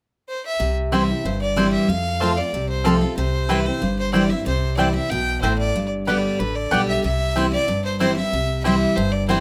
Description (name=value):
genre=bluegrass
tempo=186 BPM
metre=4/4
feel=straight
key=C major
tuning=A4 = 438 Hz
part: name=clear fiddle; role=melody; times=0.3-9.4 s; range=A4 to G5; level=-27 LUFS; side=equal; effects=none
part: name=picked steel-string acoustic guitar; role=accompaniment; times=0.6-9.4 s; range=F2 to G4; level=-24 LUFS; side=equal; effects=none
part: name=upright bass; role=bass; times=0.6-9.4 s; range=G1 to F2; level=-28 LUFS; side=equal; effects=none
part: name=mandolin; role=stabs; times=0.9-9.4 s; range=B3 to A5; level=-25 LUFS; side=equal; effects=none
room=moderate small room reverb, RT60 0.6 s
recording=close, detailed microphones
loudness=-21 LUFS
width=mono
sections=0.6-9.4 A section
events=none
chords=0.0 N.C.; 0.6 C; 1.9 F; 3.2 C; 5.8 G; 7.0 C